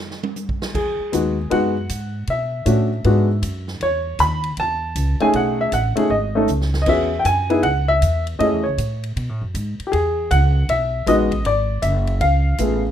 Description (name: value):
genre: jazz piano trio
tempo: 157 BPM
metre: 4/4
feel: swing 65% on 8ths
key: E major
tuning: A4 = 439 Hz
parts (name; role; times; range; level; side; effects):
- swinging big-band drum kit; drums; 0.1-12.7 s; crash cymbal, hi-hat, kick drum, ride cymbal, snare drum, toms; -32 LUFS; right 2 dB; none
- upright bass; bass; 0.7-12.9 s; F#1 to B2; -21 LUFS; equal; none
- warm baby grand piano; melody; 0.8-12.8 s; G#3 to B5; -19 LUFS; left 1 dB; none
room: light reverb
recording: minimal, uncompressed stereo recording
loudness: -17 LUFS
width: side -10 dB against mid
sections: 0.7-12.9 A section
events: drum fill 6.5-6.9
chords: 0.0 N.C.; 0.7 Emaj9; 2.3 Bm9; 3.0 E7; 3.8 Aadd9; 5.3 B13; 6.9 E69; 7.6 C#m; 8.4 F#m7; 9.2 B5; 9.9 Emaj9; 11.5 E9; 12.2 C#7b13